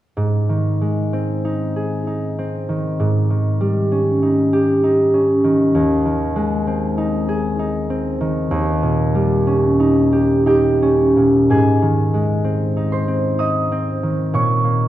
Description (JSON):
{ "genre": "classical, solo harp piece", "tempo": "64 BPM", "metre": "3/4", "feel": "rubato", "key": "Ab major", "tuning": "A4 = 443 Hz", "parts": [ { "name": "concert harp", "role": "solo", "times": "0.2-14.9 s", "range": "Eb2 to Eb6", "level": "-15 LUFS", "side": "equal", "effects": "none" } ], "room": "moderate concert hall reverb, RT60 2.1 s", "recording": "dark, warm production", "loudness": "-15 LUFS", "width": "side -13 dB against mid", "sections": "0.2-11.5 A section; 11.5-14.9 B section", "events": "none", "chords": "0.2 Ab; 3.0 Eb7/Ab; 5.8 Ab/Eb; 8.5 Eb7; 11.5 Ab; 14.3 Eb7(no3)/Bb", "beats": "| 0.16 1.12 2.07 | 2.99 3.92 4.83 | 5.75 6.68 7.60 | 8.52 9.47 10.48 | 11.50 12.44 13.39 | 14.34" }